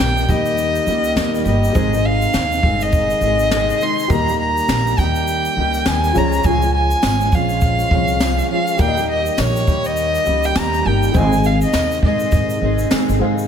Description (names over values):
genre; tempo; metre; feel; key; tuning
acoustic pop; 102 BPM; 4/4; swing 60% on 16ths; Eb mixolydian; A4 = 440 Hz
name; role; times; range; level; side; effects
rich violin; melody; 0.0-12.9 s; Db5 to C6; -19 LUFS; equal; slapback echo
dark upright piano; accompaniment; 0.0-13.5 s; F4 to F5; -30 LUFS; left 5 dB; none
fingerpicked steel-string acoustic guitar; accompaniment; 0.0-13.5 s; Ab2 to Ab4; -22 LUFS; left 1 dB; double-tracked left and right, slapback echo
tonewheel organ; sustained chords; 0.0-13.5 s; C3 to G4; -28 LUFS; equal; chorus vibrato, slow rotary speaker
upright bass; bass; 0.0-13.4 s; G1 to Ab2; -20 LUFS; equal; none
jazz brush drum kit; drums; 0.2-13.5 s; kick drum, shaker, snare drum; -22 LUFS; left 1 dB; none
tambourine; percussion; 4.7-13.1 s; none; -37 LUFS; right 8 dB; none
room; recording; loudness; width
moderate lush hall reverb, RT60 2.1 s; big arena sound; -14 LUFS; side -8 dB against mid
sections
0.0-13.5 A section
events
none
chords
0.0 Eb; 1.8 Ab; 4.1 Eb; 6.2 Db; 8.8 Eb; 11.1 Ab